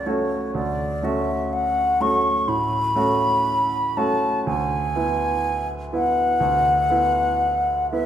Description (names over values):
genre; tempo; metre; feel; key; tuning
classical, romantic duo for flute and grand piano; 58-64 BPM; 4/4; rubato; unclear; A4 = 437 Hz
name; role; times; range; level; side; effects
silver concert flute; melody; 0.0-8.1 s; C#5 to C#6; -21 LUFS; left 1 dB; none
bright baby grand piano; accompaniment; 0.0-8.1 s; C#2 to F#4; -24 LUFS; right 2 dB; none
room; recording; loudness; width
wet recital hall reverb, RT60 1.7 s; heard from further back in the room; -19 LUFS; side -10 dB against mid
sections
0.0-8.1 A section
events
none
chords
0.0 F#m; 0.6 Dmaj7; 4.5 E7/D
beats
| 0.56 1.53 2.48 3.47 | 4.46 5.44 6.41 7.41